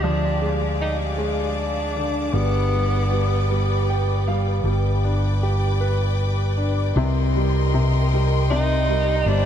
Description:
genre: six-eight pop ballad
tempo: 52 BPM (dotted quarters)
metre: 6/8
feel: straight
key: unclear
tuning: A4 = 438 Hz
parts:
  - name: warm tenor saxophone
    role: melody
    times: 0.0-3.9, 8.5-9.5 s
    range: B3 to Eb4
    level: -27 LUFS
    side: equal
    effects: ping-pong delay
  - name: bright concert grand piano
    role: accompaniment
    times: 0.0-9.5 s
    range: C3 to G5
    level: -26 LUFS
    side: equal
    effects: none
  - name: clear studio string section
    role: sustained chords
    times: 0.0-9.5 s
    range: Ab4 to D6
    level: -30 LUFS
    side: left 4 dB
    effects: none
  - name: fingered electric bass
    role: bass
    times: 0.0-9.5 s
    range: G1 to D2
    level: -21 LUFS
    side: equal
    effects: none
room: moderate huge ambient reverb, RT60 8.2 s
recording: dreamy mix soaked in reverb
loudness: -19 LUFS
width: side -9 dB against mid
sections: 0.0-4.7 A section; 4.7-7.0 B section; 7.0-9.5 C section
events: grand piano fill 3.5-4.7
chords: 0.0 Ddim; 2.3 G; 7.0 Cm7

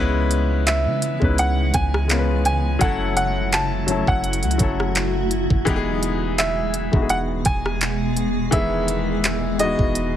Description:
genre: contemporary R&B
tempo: 84 BPM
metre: 4/4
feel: swing 54% on 16ths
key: E major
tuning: A4 = 438 Hz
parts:
  - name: warm concert grand piano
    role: accompaniment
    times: 0.0-10.2 s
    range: D#3 to B4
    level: -24 LUFS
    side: left 5 dB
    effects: none
  - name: granular cloud pad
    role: sustained chords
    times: 0.2-10.2 s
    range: B2 to G#4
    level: -27 LUFS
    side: right 1 dB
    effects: built-in reverb, sidechain pumping
  - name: soft 808-style bass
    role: bass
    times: 0.0-10.2 s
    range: D#1 to C#3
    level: -24 LUFS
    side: right 1 dB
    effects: none
  - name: smooth R&B drum kit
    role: drums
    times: 0.3-10.1 s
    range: handclaps, hi-hat, kick drum, rim click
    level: -22 LUFS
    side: right 1 dB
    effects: none
  - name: bright grand piano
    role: melody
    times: 0.7-10.2 s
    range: D#5 to A5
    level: -25 LUFS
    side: right 1 dB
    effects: tape echo
room: little or no reverb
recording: heavily compressed radio sound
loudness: -18 LUFS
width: side -10 dB against mid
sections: 0.0-10.2 A section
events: none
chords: 0.0 C#m7; 2.1 C#7; 2.8 F#m7; 5.7 Emaj7

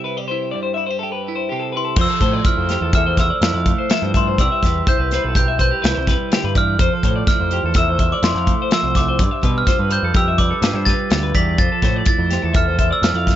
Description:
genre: math rock and midwest emo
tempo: 125 BPM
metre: 5/4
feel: straight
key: unclear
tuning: A4 = 440 Hz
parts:
  - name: twelve-string electric guitar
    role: accompaniment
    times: 0.0-13.4 s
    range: G2 to C5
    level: -26 LUFS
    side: right 10 dB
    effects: none
  - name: clean electric guitar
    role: arpeggios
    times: 0.0-13.4 s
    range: G4 to F5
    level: -24 LUFS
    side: left 9 dB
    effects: analog delay
  - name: glockenspiel with hard plastic mallets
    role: melody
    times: 1.8-13.4 s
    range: C6 to B6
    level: -21 LUFS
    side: right 2 dB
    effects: none
  - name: growling picked electric bass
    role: bass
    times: 2.0-13.3 s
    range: B1 to B2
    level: -21 LUFS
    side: equal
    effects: overdrive
  - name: modern studio drum kit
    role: drums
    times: 2.0-13.4 s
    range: crash cymbal, hi-hat, kick drum, snare drum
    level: -18 LUFS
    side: equal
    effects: none
room: light reverb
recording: dark, warm production, nothing above 7.7 kHz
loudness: -15 LUFS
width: side -12 dB against mid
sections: 0.0-2.0 A section; 2.0-13.4 B section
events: break 0.0-2.0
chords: 0.0 C; 2.0 Fmaj7; 4.4 Cmaj7; 6.8 Fmaj7; 9.2 G7; 11.6 Fmaj7

